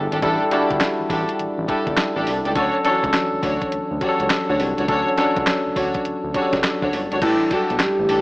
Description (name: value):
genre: R&B, new jack swing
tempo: 103 BPM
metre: 4/4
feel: swing 64% on 16ths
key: unclear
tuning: A4 = 440 Hz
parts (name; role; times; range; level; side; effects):
- bell-like tine electric piano; accompaniment; 0.0-8.2 s; E3 to A4; -21 LUFS; left 1 dB; medium stereo tremolo
- smooth gliding synth bass; bass; 0.0-8.2 s; G1 to D2; -28 LUFS; equal; none
- warm studio string section; stabs; 0.1-8.2 s; D4 to C#5; -24 LUFS; equal; none
- crisp 8-bit digital drum machine; drums; 0.1-8.2 s; crash cymbal, handclaps, hi-hat, kick drum, snare drum; -24 LUFS; equal; vintage 12-bit sampler grit
- soft octave-layered synth lead; melody; 7.2-8.2 s; E4 to G4; -19 LUFS; equal; chorus, phaser
room: light reverb, digital ambience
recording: AM radio sound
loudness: -18 LUFS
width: side -23 dB against mid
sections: 0.0-7.2 A section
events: none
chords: 0.0 A7sus4